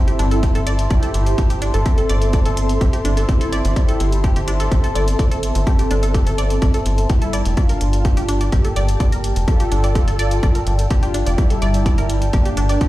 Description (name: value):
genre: melodic techno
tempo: 126 BPM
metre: 4/4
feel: straight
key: unclear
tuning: A4 = 438 Hz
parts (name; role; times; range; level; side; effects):
- mellow synth brass; melody; 0.0-12.9 s; G3 to A4; -24 LUFS; equal; chorus, sidechain pumping, dub echo
- dark analog pad; sustained chords; 0.0-12.9 s; C5 to C6; -28 LUFS; left 1 dB; chorus, sidechain pumping
- wide unison pluck; arpeggios; 0.1-12.9 s; D4 to D5; -27 LUFS; right 2 dB; cassette tape, sidechain pumping, ping-pong delay
- electronic hi-hat; drums; 0.1-12.9 s; none; -32 LUFS; left 1 dB; none
- tight sequencer bass; bass; 0.2-12.9 s; F1 to G1; -19 LUFS; equal; sidechain pumping
- electronic kick drum; drums; 0.4-12.9 s; none; -17 LUFS; equal; none
room: little or no reverb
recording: played on a big sound system in a bare room, large studio reverb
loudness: -15 LUFS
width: side -16 dB against mid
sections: 0.0-12.9 A section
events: none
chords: 0.0 Am/G; 7.1 Gmadd9